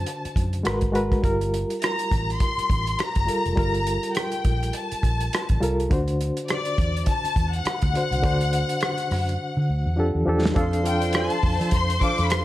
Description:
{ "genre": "lush 1970s-style soul", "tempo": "103 BPM", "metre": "4/4", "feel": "swing 58% on 16ths", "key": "G dorian", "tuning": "A4 = 436 Hz", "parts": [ { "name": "warm symphonic violin section", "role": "melody", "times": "0.0-12.4 s", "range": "D5 to D6", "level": "-28 LUFS", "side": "left 3 dB", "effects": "none" }, { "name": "reed electric piano", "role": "accompaniment", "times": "0.0-12.4 s", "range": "D3 to F5", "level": "-27 LUFS", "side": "equal", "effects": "fast tremolo" }, { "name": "vintage muted fingered electric bass", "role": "bass", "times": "0.0-12.4 s", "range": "F1 to F3", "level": "-26 LUFS", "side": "equal", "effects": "none" }, { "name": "warm soul drum kit", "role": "drums", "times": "0.1-12.4 s", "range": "hi-hat, kick drum, rim click, snare drum", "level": "-25 LUFS", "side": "equal", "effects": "none" }, { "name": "warm studio string section", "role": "second line", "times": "10.6-12.4 s", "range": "C5 to C6", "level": "-31 LUFS", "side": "equal", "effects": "none" }, { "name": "mellow electric guitar", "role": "riff", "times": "10.6-12.3 s", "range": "F4 to D5", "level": "-33 LUFS", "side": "right 4 dB", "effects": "none" }, { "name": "glockenspiel with soft plastic mallets", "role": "texture", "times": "11.2-12.4 s", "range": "C6", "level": "-41 LUFS", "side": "left 4 dB", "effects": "none" } ], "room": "small room reverb", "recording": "none", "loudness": "-21 LUFS", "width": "side -15 dB against mid", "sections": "0.0-10.6 A section; 10.6-12.4 B section", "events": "drum fill 9.4-10.6", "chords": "0.0 D7; 0.7 Abm9; 1.2 Gm9; 5.9 D7; 10.0 F69; 10.6 F6", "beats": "0.07 0.66 | 1.24 1.82 2.41 2.99 | 3.57 4.16 4.74 5.32 | 5.91 6.49 7.07 7.66 | 8.24 8.82 9.40 9.99 | 10.57 11.15 11.73 12.31" }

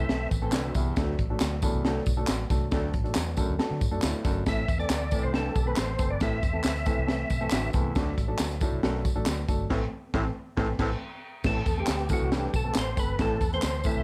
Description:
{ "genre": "uptempo 1960s-style soul", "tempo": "137 BPM", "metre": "4/4", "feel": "straight", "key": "A dorian", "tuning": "A4 = 440 Hz", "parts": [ { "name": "percussive tonewheel organ", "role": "melody", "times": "0.0-0.3, 4.5-7.7, 11.5-14.0 s", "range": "F#4 to E5", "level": "-36 LUFS", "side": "equal", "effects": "overdrive, chorus vibrato, stopped rotary speaker, tape echo" }, { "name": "dark grand piano", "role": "accompaniment", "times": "0.0-14.0 s", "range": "E3 to E5", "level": "-36 LUFS", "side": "equal", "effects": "plate reverb" }, { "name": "growling baritone saxophone", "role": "riff", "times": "0.0-14.0 s", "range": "D2 to A2", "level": "-36 LUFS", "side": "equal", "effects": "none" }, { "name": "vintage muted fingered electric bass", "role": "bass", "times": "0.0-14.0 s", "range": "G1 to D3", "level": "-34 LUFS", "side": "equal", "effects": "none" }, { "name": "crunchy breakbeat drum kit", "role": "drums", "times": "0.1-14.0 s", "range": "crash cymbal, hi-hat, kick drum, snare drum", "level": "-31 LUFS", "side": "equal", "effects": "none" }, { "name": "tambourine and handclaps", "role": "percussion", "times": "0.3-13.9 s", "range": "none", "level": "-40 LUFS", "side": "equal", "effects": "none" }, { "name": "mellow horn section", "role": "second line", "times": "2.7-3.0, 9.7-10.9 s", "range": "E3 to A4", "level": "-39 LUFS", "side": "equal", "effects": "plate reverb" } ], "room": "light reverb", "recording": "none", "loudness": "-28 LUFS", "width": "mono", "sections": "0.0-11.4 A section; 11.4-14.0 A section", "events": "band accent 2.7-4.5, 9.7-11.4", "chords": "0.0 Am; 8.0 D; 9.7 Am", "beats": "0.10 0.53 | 0.97 1.41 1.85 2.29 | 2.72 3.16 3.60 4.04 | 4.47 4.91 5.34 5.78 | 6.22 6.65 7.09 7.52 | 7.96 8.39 8.83 9.27 | 9.70 10.14 10.57 11.01 | 11.45 11.88 12.32 12.76 | 13.20 13.63" }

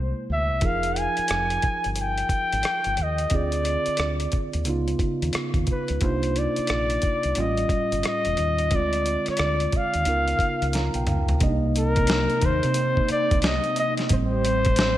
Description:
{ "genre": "R&B, neo-soul", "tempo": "89 BPM", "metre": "4/4", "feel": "swing 64% on 16ths", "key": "C minor", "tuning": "A4 = 438 Hz", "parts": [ { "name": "breathy flugelhorn", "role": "melody", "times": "0.0-15.0 s", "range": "Bb4 to Ab5", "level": "-25 LUFS", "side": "left 1 dB", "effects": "slapback echo" }, { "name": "mellow tine electric piano", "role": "accompaniment", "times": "0.0-15.0 s", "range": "A2 to Bb5", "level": "-28 LUFS", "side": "right 3 dB", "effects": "none" }, { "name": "deep dub fingered electric bass", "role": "bass", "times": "0.0-15.0 s", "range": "E1 to C3", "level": "-27 LUFS", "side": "equal", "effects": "none" }, { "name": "dusty soul sampler-style drum kit", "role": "drums", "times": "0.6-15.0 s", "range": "hi-hat, kick drum, rim click, snare drum, toms", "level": "-26 LUFS", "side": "equal", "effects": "none" }, { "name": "hollow soft pad", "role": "sustained chords", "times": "11.4-15.0 s", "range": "C3 to G4", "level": "-32 LUFS", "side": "left 2 dB", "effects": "ensemble chorus" } ], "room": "moderate lush hall reverb, RT60 2.2 s", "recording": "big arena sound", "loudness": "-21 LUFS", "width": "side -13 dB against mid", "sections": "0.0-11.4 A section; 11.4-15.0 B section", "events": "tine electric piano fill 10.4-11.4; drum fill 10.7-11.4", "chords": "0.0 C7b13; 0.6 Fm11; 3.3 Dm7b5; 4.7 Db9; 6.0 Cm11; 7.4 A7b13; 8.7 Dm7b5; 10.1 Db13; 11.4 Cm7; 14.1 Am7", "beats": "| 0.62 1.29 1.97 2.64 | 3.32 3.99 4.67 5.34 | 6.01 6.69 7.36 8.04 | 8.71 9.38 10.06 10.73 | 11.41 12.08 12.76 13.43 | 14.10 14.78" }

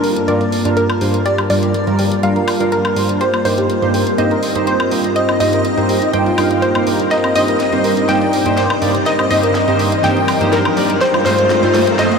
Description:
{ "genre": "progressive house", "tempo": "123 BPM", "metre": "4/4", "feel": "straight", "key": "unclear", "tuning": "A4 = 441 Hz", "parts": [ { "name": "wide unison pluck", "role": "melody", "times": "0.0-12.2 s", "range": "Bb4 to G5", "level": "-19 LUFS", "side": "left 1 dB", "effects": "ping-pong delay" }, { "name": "airy dreamy lead", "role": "second line", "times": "0.0-12.2 s", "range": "Bb4 to G5", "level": "-24 LUFS", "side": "left 1 dB", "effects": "chorus, tape echo" }, { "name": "evolving wavetable pad", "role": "sustained chords", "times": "0.0-12.2 s", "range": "G2 to A5", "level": "-20 LUFS", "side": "equal", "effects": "chorus, built-in reverb" }, { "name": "soft round pluck", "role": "arpeggios", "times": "0.0-12.2 s", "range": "G3 to Eb5", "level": "-22 LUFS", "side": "left 1 dB", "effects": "ensemble chorus, tape echo" }, { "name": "chorused polysynth", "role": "stabs", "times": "0.0-12.1 s", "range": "G2 to F5", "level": "-17 LUFS", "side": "right 1 dB", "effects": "tape echo" }, { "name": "pop drum kit", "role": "drums", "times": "0.0-12.2 s", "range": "hi-hat, snare drum, woodblock", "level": "-24 LUFS", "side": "left 1 dB", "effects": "overdrive, high-pass filter on snare, high-pass filter on hats, high-pass filter on perc, high-pass filter on room" }, { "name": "riser", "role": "sound effects", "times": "9.0-12.2 s", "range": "none", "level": "-24 LUFS", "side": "right 2 dB", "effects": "none" } ], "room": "wet huge ambient reverb, RT60 6.7 s", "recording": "dreamy mix soaked in reverb", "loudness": "-12 LUFS", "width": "side -5 dB against mid", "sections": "0.0-12.2 A section", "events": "build-up 0.0-12.2; filter sweep on analog polysynth 0.0-12.2; drum fill 7.1-12.2; riser 9.0-12.2", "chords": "0.0 Gm7; 3.2 Eb6/G; 7.1 Cm7/G; 11.0 F7/G", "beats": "0.28 0.77 | 1.26 1.74 2.23 2.72 | 3.21 3.69 4.18 4.67 | 5.16 5.65 6.13 6.62 | 7.11 7.60 8.09 8.57 | 9.06 9.55 10.04 10.53 | 11.01 11.50 11.99" }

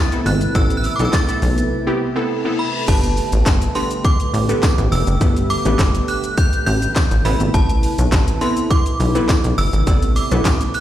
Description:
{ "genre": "dance-pop", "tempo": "103 BPM", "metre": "4/4", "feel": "straight", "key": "unclear", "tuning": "A4 = 436 Hz", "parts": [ { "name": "synth chime", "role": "melody", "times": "0.0-10.8 s", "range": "A5 to A6", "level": "-24 LUFS", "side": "right 1 dB", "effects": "ensemble chorus, ping-pong delay" }, { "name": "glassy wavetable pluck", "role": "accompaniment", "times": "0.0-10.8 s", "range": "B3 to D5", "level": "-24 LUFS", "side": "equal", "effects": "chorus, sidechain pumping" }, { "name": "chorused pulse-width pad", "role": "sustained chords", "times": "0.0-10.8 s", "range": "C3 to B4", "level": "-25 LUFS", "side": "equal", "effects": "sidechain pumping" }, { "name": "house drum kit", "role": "drums", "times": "0.1-10.8 s", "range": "crash cymbal, handclaps, hi-hat, kick drum, shaker, snare drum", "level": "-18 LUFS", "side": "equal", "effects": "none" }, { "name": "plucky analog bass", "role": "bass", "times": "0.3-10.7 s", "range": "F1 to B1", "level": "-17 LUFS", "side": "equal", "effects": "sidechain pumping" }, { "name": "tambourine", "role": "percussion", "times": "1.1-10.6 s", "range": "none", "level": "-34 LUFS", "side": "left 5 dB", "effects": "none" }, { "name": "reverse cymbal", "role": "sound effects", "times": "2.0-2.9 s", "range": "none", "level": "-30 LUFS", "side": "left 6 dB", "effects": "none" } ], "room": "little or no reverb", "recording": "played on a big sound system in a bare room, stone room reverb", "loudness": "-15 LUFS", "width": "side -12 dB against mid", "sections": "0.0-2.9 A section; 2.9-10.8 B section", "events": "break 1.7-2.9; reverse cymbal 2.0-2.9", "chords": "0.0 Amadd9; 2.9 Gadd9; 7.2 Amadd9", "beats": "| 0.55 1.13 1.72 2.30 | 2.88 3.46 4.04 4.63 | 5.21 5.79 6.38 6.96 | 7.54 8.12 8.71 9.29 | 9.87 10.45" }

